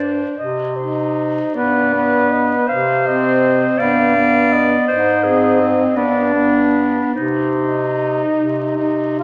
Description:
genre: classical, lyrical piece for single-reed quartet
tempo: 53 BPM (dotted quarters)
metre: 6/8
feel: uneven beats, rubato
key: C minor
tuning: A4 = 436 Hz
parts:
  - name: bright clarinet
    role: second line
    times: 0.0-8.9 s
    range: C4 to D5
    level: -22 LUFS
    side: equal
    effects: none
  - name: warm tenor saxophone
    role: accompaniment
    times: 0.0-9.2 s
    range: B3 to F4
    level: -21 LUFS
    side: equal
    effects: none
  - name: clear bass clarinet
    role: bass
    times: 0.0-9.2 s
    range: G2 to C3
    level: -23 LUFS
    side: equal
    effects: none
  - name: mellow clarinet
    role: melody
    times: 0.4-8.3 s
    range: C5 to F5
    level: -22 LUFS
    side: equal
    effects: none
room: wet recital hall reverb, RT60 1.8 s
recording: heard from further back in the room, vinyl crackle, small speaker sound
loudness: -16 LUFS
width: mono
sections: 0.0-9.2 A section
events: none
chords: 0.4 Cm; 1.5 G; 2.7 Cm; 3.8 G; 4.9 Ab; 6.0 G; 7.1 Cm

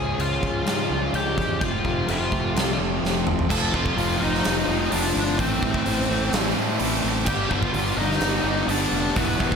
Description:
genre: quiet-loud alternative rock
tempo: 127 BPM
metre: 4/4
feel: straight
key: unclear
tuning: A4 = 437 Hz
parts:
  - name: octave-fuzz lead guitar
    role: melody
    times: 0.0-9.6 s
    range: B3 to A5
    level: -27 LUFS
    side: left 2 dB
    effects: distortion
  - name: fingerpicked plugged-in swing-style acoustic guitar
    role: arpeggios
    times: 0.0-3.5 s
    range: F2 to F4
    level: -33 LUFS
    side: right 2 dB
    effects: slapback echo
  - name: overdriven semi-hollow guitar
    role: riff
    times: 0.0-9.6 s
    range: F2 to F4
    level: -28 LUFS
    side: left 11 dB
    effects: slapback echo
  - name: thick fuzz guitar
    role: riff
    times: 0.0-9.6 s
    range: F2 to F4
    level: -29 LUFS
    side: right 9 dB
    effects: distortion, slapback echo
  - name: fuzz fingered electric bass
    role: bass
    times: 0.0-9.6 s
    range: E1 to A2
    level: -29 LUFS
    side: right 1 dB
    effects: overdrive
  - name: big rock drum kit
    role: drums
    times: 0.2-9.6 s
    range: crash cymbal, hi-hat, kick drum, snare drum, toms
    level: -26 LUFS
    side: right 1 dB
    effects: none
  - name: heavy high-gain guitar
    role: riff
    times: 3.5-9.6 s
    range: E2 to A3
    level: -30 LUFS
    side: equal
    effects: distortion
room: moderate scoring stage reverb, RT60 1.5 s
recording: big arena sound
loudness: -20 LUFS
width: side -6 dB against mid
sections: 0.0-3.5 A section; 3.5-9.6 B section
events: drum fill 3.0-3.5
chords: 0.0 Db; 1.6 F; 5.4 Am; 7.3 G

